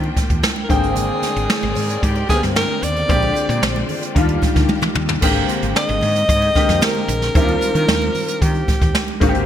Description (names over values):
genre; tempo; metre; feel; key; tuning
polished 1980s jazz-funk pop; 113 BPM; 4/4; straight; Eb major; A4 = 440 Hz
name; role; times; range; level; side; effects
warm grand piano; accompaniment; 0.0-9.5 s; D3 to G5; -22 LUFS; left 2 dB; ensemble chorus
warm studio string section; sustained chords; 0.0-5.2 s; Eb3 to G5; -29 LUFS; left 1 dB; none
woody fretless electric bass; bass; 0.0-9.5 s; Ab1 to Eb3; -21 LUFS; equal; none
jazz brush drum kit; drums; 0.0-9.5 s; crash cymbal, hi-hat, kick drum, snare drum, toms; -19 LUFS; right 1 dB; none
congas; percussion; 0.0-9.3 s; none; -32 LUFS; right 2 dB; none
breathy alto saxophone; melody; 0.6-9.2 s; G4 to Eb5; -21 LUFS; equal; ping-pong delay
room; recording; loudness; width
light reverb; bright 1980s-style digital production; -15 LUFS; side -10 dB against mid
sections
0.0-5.2 A section; 5.2-9.5 A section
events
drum fill 4.7-5.2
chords
0.0 Ebmaj13; 0.7 Abmaj9#11; 3.1 Bb13; 4.2 Ebmaj9; 5.2 Abmaj9#11; 7.4 Ebmaj13